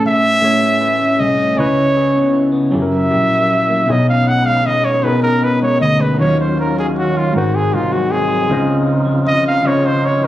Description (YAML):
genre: slow six-eight R&B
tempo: 52 BPM (dotted quarters)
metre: 6/8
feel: straight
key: unclear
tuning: A4 = 440 Hz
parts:
  - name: mellow trumpet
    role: melody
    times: 0.0-10.3 s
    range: E#4 to F#5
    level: -16 LUFS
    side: equal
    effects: none
  - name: electric guitar at the edge of break-up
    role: second line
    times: 0.0-10.3 s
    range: G#2 to B4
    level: -20 LUFS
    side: right 2 dB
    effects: spring reverb
  - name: tine electric piano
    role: accompaniment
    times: 0.0-10.3 s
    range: A2 to G#5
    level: -18 LUFS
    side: left 3 dB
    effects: medium stereo tremolo
  - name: vintage muted fingered electric bass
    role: bass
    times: 0.0-9.3 s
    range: F#1 to D#2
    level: -21 LUFS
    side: equal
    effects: none
  - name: tonewheel organ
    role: sustained chords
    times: 3.9-10.3 s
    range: C#3 to E#4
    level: -23 LUFS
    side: left 1 dB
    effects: overdrive, fast rotary speaker
room: light reverb, digital ambience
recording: recorded on a phone in the room, club reverb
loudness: -12 LUFS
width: side -13 dB against mid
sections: 0.0-10.3 A section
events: none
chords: 0.0 Amaj9; 1.6 C#m7; 2.7 F#7b9; 3.9 B69; 6.2 D#m9; 7.3 G#7; 8.5 C#maj9